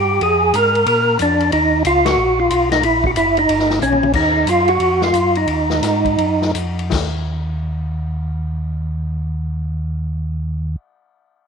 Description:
soul jazz organ trio; 156-183 BPM; 4/4; swing 64% on 8ths; Eb minor; A4 = 440 Hz
percussive tonewheel organ; melody; 0.0-6.5 s; Db4 to Bb4; -14 LUFS; right 1 dB; slow rotary speaker, overdrive, chorus vibrato
mellow tonewheel organ; bass; 0.0-10.8 s; Gb1 to Bb2; -21 LUFS; equal; chorus vibrato, slow rotary speaker
vintage drum kit; drums; 0.2-7.0 s; crash cymbal, hi-hat, kick drum, ride cymbal, snare drum, splash cymbal, toms; -24 LUFS; left 6 dB
light reverb, small room ambience; 1960s-style stereo; -15 LUFS; side -6 dB against mid
0.0-4.1 A section; 4.1-6.9 B section; 6.9-10.0 C section
band accent 2.0; drum fill 3.8-4.1; slowing down 4.1-6.9
0.2 Fmadd11; 0.9 Bb; 1.5 Ebm9; 2.8 Gb7; 3.5 Eb7; 4.1 Ebmadd9; 5.5 Ebm; 6.9 N.C.

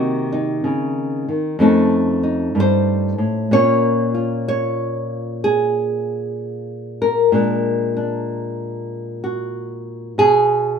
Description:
solo jazz; 63 BPM; 4/4; swing 66% on 8ths; A4 = 439 Hz
nylon-string guitar; solo; 0.0-10.8 s; F2 to Db5; -17 LUFS; equal
moderate large studio reverb, RT60 0.9 s; minimal, uncompressed stereo recording; -16 LUFS; side -6 dB against mid
0.0-10.8 A section
0.0 Cm7b5; 1.6 F7b13; 3.5 Bbm7; 7.3 Bb7b13

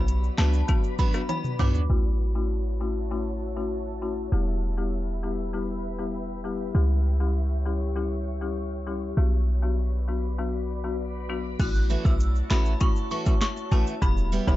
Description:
dancehall; 99 BPM; 4/4; straight; A4 = 440 Hz
synth chime; melody; 0.0-1.7, 11.6-14.6 s; A5 to F#6; -34 LUFS; equal; ensemble chorus, ping-pong delay
folk marimba with hard mallets; accompaniment; 0.0-14.6 s; F#3 to G4; -32 LUFS; left 5 dB
glassy FM pad; sustained chords; 0.1-14.6 s; F#4 to C#6; -37 LUFS; left 1 dB; ensemble chorus, built-in reverb, sidechain pumping
clean 808-style bass; bass; 0.0-14.6 s; E1 to C#2; -25 LUFS; equal
afro-pop drum kit; drums; 0.1-1.9, 11.6-14.6 s; crash cymbal, handclaps, hi-hat, kick drum, rim click, snare drum, toms; -25 LUFS; equal; vintage 12-bit sampler grit
tube shaker and timbales; percussion; 0.1-1.9, 11.6-14.6 s; -39 LUFS; right 9 dB
picked steel-string acoustic guitar; arpeggios; 0.4-1.8, 11.9-14.5 s; E3 to G4; -34 LUFS; right 5 dB
digital ambience; dark, warm production, low-pass filter, nothing above 7.8 kHz; -24 LUFS; side -16 dB against mid
0.0-1.9 A section; 1.9-11.6 B section; 11.6-14.6 A section
drum fill 1.3-1.9; filter sweep 1.9-11.6
0.0 Bm; 1.9 A6; 4.3 Em; 6.7 C#dim; 9.2 Bm; 11.6 A6; 14.0 Em

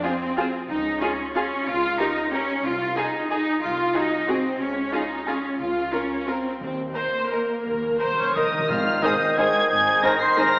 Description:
classical, orchestral ballroom waltz; 163-199 BPM; 3/4; rubato; Ab major; A4 = 440 Hz
warm symphonic violin section; melody; 0.0-10.6 s; C5 to C7; -28 LUFS; equal
warm symphonic violin section; second line; 0.0-10.5 s; Ab4 to C5; -30 LUFS; equal
clear symphonic viola section; accompaniment; 0.0-10.5 s; Eb3 to C5; -28 LUFS; equal
rich symphonic cello section; bass; 0.0-10.0 s; Ab2 to F4; -25 LUFS; equal
rich symphonic double bass section; bass; 0.7-10.0 s; Ab1 to Eb2; -37 LUFS; equal
timpani; percussion; 6.6-9.2 s; Ab2 to Eb3; -34 LUFS; equal
mellow oboe; second line; 8.2-10.6 s; Db4 to C5; -24 LUFS; equal
small flute group; second line; 8.2-10.6 s; Db5 to C6; -25 LUFS; equal
clear clarinet; second line; 8.7-10.6 s; C5; -28 LUFS; equal
warm bassoon; accompaniment; 8.7-10.6 s; Eb3; -27 LUFS; equal
mellow French horn section; sustained chords; 9.0-10.5 s; C4 to Eb4; -33 LUFS; equal
warm trombone section; sustained chords; 9.0-10.5 s; Eb3 to Ab3; -32 LUFS; equal
wet scoring stage reverb, RT60 1.8 s; heard from further back in the room, AM radio sound; -20 LUFS; side -32 dB against mid
0.0-8.7 A section; 8.7-10.6 B section
timpani fill 7.7-8.7
0.0 Fm; 0.7 Db; 1.7 Eb7/Db; 2.6 Ab/C; 3.6 Ab7/C (rootless); 4.6 Db; 5.6 Bbm/Db (rootless); 6.6 Eb5; 8.7 Ab

